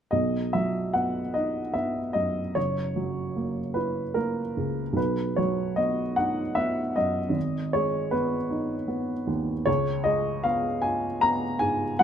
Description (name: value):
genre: classical, romantic character piece for solo piano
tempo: 76 BPM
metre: 3/4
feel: rubato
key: B major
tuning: A4 = 441 Hz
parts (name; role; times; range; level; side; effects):
- warm upright piano; solo; 0.1-12.0 s; F#1 to A#5; -24 LUFS; equal; none
room: light reverb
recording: close, detailed microphones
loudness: -24 LUFS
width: side -8 dB against mid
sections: 0.1-12.0 A section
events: none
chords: 0.1 B; 2.6 F#7; 5.0 B; 7.4 G#m; 9.7 C#7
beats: | 0.13 0.96 1.76 | 2.56 3.36 4.17 | 4.97 5.78 6.57 | 7.36 8.12 8.90 | 9.68 10.44 11.21 | 11.98